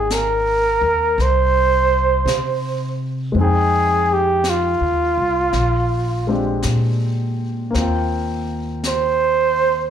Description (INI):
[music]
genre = jazz ballad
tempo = 55 BPM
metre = 4/4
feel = swing 66% on 8ths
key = unclear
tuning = A4 = 440 Hz
[part]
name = breathy flugelhorn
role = melody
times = 0.0-9.9 s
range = F4 to C5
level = -17 LUFS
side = right 2 dB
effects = plate reverb, slapback echo
[part]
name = warm grand piano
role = accompaniment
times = 0.0-9.9 s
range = Ab3 to G5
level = -25 LUFS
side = left 3 dB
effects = plate reverb, slapback echo
[part]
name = upright bass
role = bass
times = 0.0-9.9 s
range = Ab1 to C3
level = -21 LUFS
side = left 1 dB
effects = none
[part]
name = jazz brush drum kit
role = drums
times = 0.1-9.9 s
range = brushed snare drum, hi-hat, snare drum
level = -31 LUFS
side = left 1 dB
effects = slapback echo
[sound]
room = moderate club reverb, RT60 0.7 s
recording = live gig heard through the venue's PA, club reverb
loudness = -16 LUFS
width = side -8 dB against mid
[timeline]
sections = 0.0-9.9 A section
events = none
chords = 0.0 Abmaj9; 3.4 Fm9; 5.5 Bb13; 7.7 Eb6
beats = 0.10 1.18 2.27 | 3.36 4.44 5.54 6.64 | 7.74 8.84